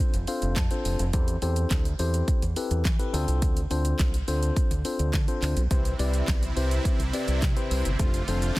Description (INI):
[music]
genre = dance-pop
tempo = 105 BPM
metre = 4/4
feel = straight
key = unclear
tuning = A4 = 439 Hz
[part]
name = mellow tine electric piano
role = accompaniment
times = 0.0-8.6 s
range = C4 to A5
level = -31 LUFS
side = left 3 dB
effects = sidechain pumping
[part]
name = fingered electric bass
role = bass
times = 0.1-8.6 s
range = F1 to E3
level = -26 LUFS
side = equal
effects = sidechain pumping
[part]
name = pop drum kit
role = drums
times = 0.1-8.6 s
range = handclaps, hi-hat, kick drum, shaker, snare drum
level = -26 LUFS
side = equal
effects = none
[part]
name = supersaw chords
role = sustained chords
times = 5.7-8.6 s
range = C3 to F4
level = -33 LUFS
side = right 2 dB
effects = sidechain pumping
[sound]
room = digital ambience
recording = dense, heavily limited modern master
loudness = -23 LUFS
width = side -19 dB against mid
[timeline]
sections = 0.0-8.6 A section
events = tine electric piano fill 0.0-1.1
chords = 0.0 F6; 1.1 Am7; 3.1 Dm7; 5.7 Cmaj7; 8.0 F6